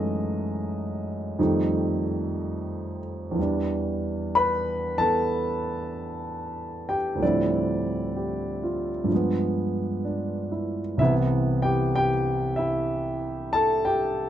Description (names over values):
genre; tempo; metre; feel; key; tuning
solo jazz; 63 BPM; 4/4; swing 66% on 8ths, rubato; C major; A4 = 440 Hz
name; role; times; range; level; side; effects
warm grand piano; solo; 0.0-14.3 s; C2 to B5; -24 LUFS; equal; none
room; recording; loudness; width
light reverb; dark, warm production; -24 LUFS; side -11 dB against mid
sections
0.0-14.3 A section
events
none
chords
0.0 F#m9; 1.4 F9; 3.4 Em7; 7.2 Dm11; 9.1 G7b9; 11.0 Cmaj7